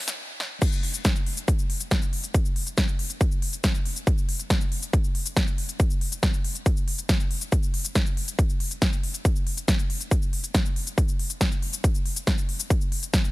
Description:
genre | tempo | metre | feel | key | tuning
trance | 139 BPM | 4/4 | straight | none | none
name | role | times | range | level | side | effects
big-room dance drum kit | drums | 0.1-13.3 s | crash cymbal, hi-hat, shaker, snare drum | -29 LUFS | left 1 dB | overdrive
electronic kick drum | drums | 0.6-13.2 s | none | -23 LUFS | equal | overdrive
room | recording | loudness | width
digital ambience | high-pass filter | -23 LUFS | side -20 dB against mid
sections
0.6-13.3 A section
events
drum fill 0.0, 0.4; stop 0.2-0.6; drop 0.6-13.3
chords
none

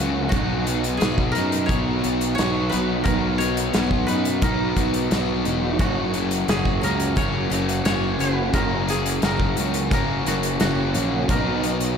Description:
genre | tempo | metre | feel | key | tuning
rock, shoegaze and dream pop | 88 BPM | 4/4 | straight | F# major | A4 = 440 Hz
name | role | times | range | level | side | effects
koto | melody | 0.0-12.0 s | F#4 to C#5 | -29 LUFS | left 1 dB | ping-pong delay
picked twelve-string acoustic guitar | arpeggios | 0.0-11.3 s | F#3 to F#4 | -33 LUFS | right 6 dB | none
electric guitar through a small old amp | riff | 0.0-12.0 s | F#2 to F#4 | -28 LUFS | right 8 dB | reverse reverb
overdriven semi-hollow guitar | riff | 0.0-12.0 s | F#2 to D#4 | -24 LUFS | left 6 dB | lush chorus
fuzz fingered electric bass | bass | 0.0-12.0 s | E1 to F#2 | -26 LUFS | equal | overdrive
loose indie drum kit | drums | 0.3-12.0 s | hi-hat, kick drum, snare drum | -26 LUFS | equal | none
room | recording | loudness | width
wet lush hall reverb, RT60 1.8 s, studio reverb | dreamy mix soaked in reverb | -19 LUFS | side -7 dB against mid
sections
0.0-12.0 A section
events
none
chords
0.3 Bmaj7; 5.8 F#; 11.3 Bmaj7

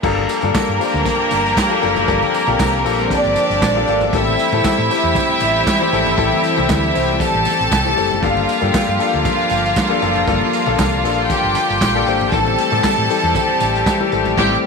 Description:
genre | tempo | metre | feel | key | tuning
disco | 117 BPM | 4/4 | straight | G dorian | A4 = 439 Hz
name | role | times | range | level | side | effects
clear studio string section | second line | 0.0-14.6 s | Bb3 to A5 | -18 LUFS | right 1 dB | none
warm concert grand piano | accompaniment | 0.0-14.7 s | G3 to C5 | -21 LUFS | left 13 dB | none
clear studio string section | sustained chords | 0.0-14.7 s | E3 to G4 | -22 LUFS | equal | none
hollow-body short-scale fingered electric bass | bass | 0.0-14.6 s | F#1 to A2 | -23 LUFS | right 2 dB | none
vintage drum kit | drums | 0.0-14.5 s | crash cymbal, handclaps, hi-hat, kick drum, snare drum | -22 LUFS | right 2 dB | none
congas | percussion | 0.0-14.4 s | none | -31 LUFS | left 11 dB | none
tambourine | percussion | 0.0-14.0 s | none | -34 LUFS | right 16 dB | none
room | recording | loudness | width
light reverb, small room ambience | 1960s-style stereo with parts hard left and right | -14 LUFS | side -4 dB against mid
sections
0.0-14.7 A section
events
band accent 14.4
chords
0.0 Gm9; 4.1 Am7; 8.2 Gm9; 12.3 Am7

